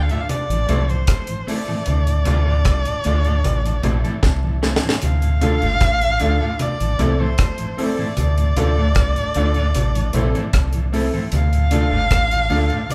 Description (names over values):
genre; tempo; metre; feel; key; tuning
roots reggae; 76 BPM; 4/4; straight; D minor; A4 = 440 Hz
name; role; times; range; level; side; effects
warm erhu; melody; 0.0-12.9 s; C5 to F5; -26 LUFS; equal; none
electric guitar at the edge of break-up; accompaniment; 0.0-12.8 s; A3 to A4; -30 LUFS; equal; tape echo
deep dub fingered electric bass; bass; 0.0-12.7 s; G1 to D2; -22 LUFS; equal; none
mellow tonewheel organ; accompaniment; 0.1-12.8 s; D2 to F4; -31 LUFS; equal; none
deep reggae drum kit; drums; 0.1-12.9 s; hi-hat, kick drum, rim click, snare drum; -23 LUFS; equal; none
congas; percussion; 0.3-12.9 s; none; -31 LUFS; equal; tape echo
warm upright piano; stabs; 5.4-12.7 s; C4 to A4; -28 LUFS; equal; none
room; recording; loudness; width
moderate large studio reverb, RT60 1.3 s; band playing live in one room; -19 LUFS; mono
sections
0.0-12.9 A section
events
drum fill 4.2-5.0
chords
0.3 Am; 1.9 Dm; 3.4 Am; 5.0 Dm; 6.6 Am; 8.2 Dm; 9.8 Am; 11.3 Dm